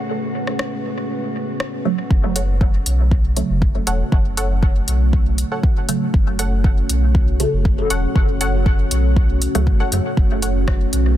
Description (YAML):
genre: dub techno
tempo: 119 BPM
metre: 4/4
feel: straight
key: F# minor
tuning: A4 = 440 Hz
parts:
  - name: deep dark ambient pad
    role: sustained chords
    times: 0.0-11.2 s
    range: A3 to C#5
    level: -25 LUFS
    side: equal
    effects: chorus, built-in reverb, sidechain pumping
  - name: filtered dub chord stab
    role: riff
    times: 0.0-10.6 s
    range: A4 to F#5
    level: -29 LUFS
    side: equal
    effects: chorus, sidechain pumping, dub echo
  - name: metallic inharmonic drone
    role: texture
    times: 0.0-2.1 s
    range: F#4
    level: -37 LUFS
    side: left 2 dB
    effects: chorus, built-in reverb, sidechain pumping
  - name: deep house drum kit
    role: drums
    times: 0.5-11.0 s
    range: hi-hat, rim click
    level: -26 LUFS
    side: left 1 dB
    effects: soft clipping on snare, dub echo
  - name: filtered dub chord stab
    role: stabs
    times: 1.9-9.8 s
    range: C#3 to A3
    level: -26 LUFS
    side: right 2 dB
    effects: phaser, sidechain pumping, dub echo
  - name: pure sine sub bass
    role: bass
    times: 2.1-11.2 s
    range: E1 to F#2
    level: -19 LUFS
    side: equal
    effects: sidechain pumping
  - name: electronic kick drum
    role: drums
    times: 2.1-10.8 s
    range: none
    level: -17 LUFS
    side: equal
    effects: none
room: little or no reverb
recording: dense, heavily limited modern master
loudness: -16 LUFS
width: side -12 dB against mid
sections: 0.0-2.1 A section; 2.1-11.2 B section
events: filter sweep on ambient pad 0.0-2.1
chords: 0.0 F#m